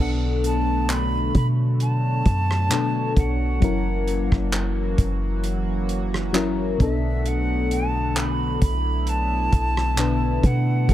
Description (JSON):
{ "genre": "contemporary R&B", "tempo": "66 BPM", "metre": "4/4", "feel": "swing 54% on 16ths", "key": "B minor", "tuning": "A4 = 441 Hz", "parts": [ { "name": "silver concert flute", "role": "melody", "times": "0.0-10.9 s", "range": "E5 to B5", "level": "-28 LUFS", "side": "right 2 dB", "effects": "dub echo" }, { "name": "mellow FM electric piano", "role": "accompaniment", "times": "0.0-10.9 s", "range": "A2 to B4", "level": "-26 LUFS", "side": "left 4 dB", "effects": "chorus" }, { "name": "chorused pulse-width pad", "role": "sustained chords", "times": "0.0-10.9 s", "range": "D3 to C#5", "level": "-31 LUFS", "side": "right 2 dB", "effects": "sidechain pumping" }, { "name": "clean 808-style bass", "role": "bass", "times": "0.0-10.9 s", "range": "F#1 to B2", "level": "-23 LUFS", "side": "equal", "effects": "none" }, { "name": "warm soul drum kit", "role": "drums", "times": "0.4-10.9 s", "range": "handclaps, hi-hat, kick drum, rim click", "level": "-23 LUFS", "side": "equal", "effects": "none" } ], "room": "studio reverb", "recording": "echo-heavy mix", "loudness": "-20 LUFS", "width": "side -12 dB against mid", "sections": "0.0-10.9 A section", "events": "none", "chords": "0.0 Bm7; 3.6 F#7; 6.8 Bm7", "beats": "0.89 1.80 2.71 | 3.62 4.53 5.44 6.35 | 7.25 8.16 9.07 9.98 | 10.89" }